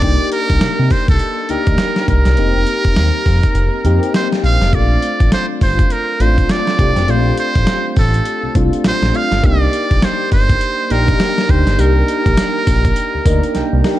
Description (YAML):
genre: R&B, new jack swing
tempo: 102 BPM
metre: 4/4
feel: swing 60% on 16ths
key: Bb major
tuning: A4 = 440 Hz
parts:
  - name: trumpet with metal mute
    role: melody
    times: 0.0-13.9 s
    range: A4 to F5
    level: -19 LUFS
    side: right 2 dB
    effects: none
  - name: soft electric-piano-like synth keys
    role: accompaniment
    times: 0.0-14.0 s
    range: A3 to Bb5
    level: -20 LUFS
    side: left 2 dB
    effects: chorus, phaser
  - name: smooth gliding synth bass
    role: bass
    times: 0.0-13.8 s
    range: F1 to C3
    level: -15 LUFS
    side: equal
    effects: none
  - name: dusty soul sampler-style drum kit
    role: drums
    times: 0.0-14.0 s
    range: hi-hat, kick drum, snare drum, tambourine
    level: -16 LUFS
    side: equal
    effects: overdrive
room: light reverb, digital ambience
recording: dark, warm production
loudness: -12 LUFS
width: side -14 dB against mid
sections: 0.0-4.7 A section; 4.7-14.0 B section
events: kick muted 3.6-4.7; synth keys fill 13.3-14.0; drum fill 13.6-14.0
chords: 0.0 Cm7; 2.4 F7sus4; 4.7 Bbmaj9; 9.4 Cm7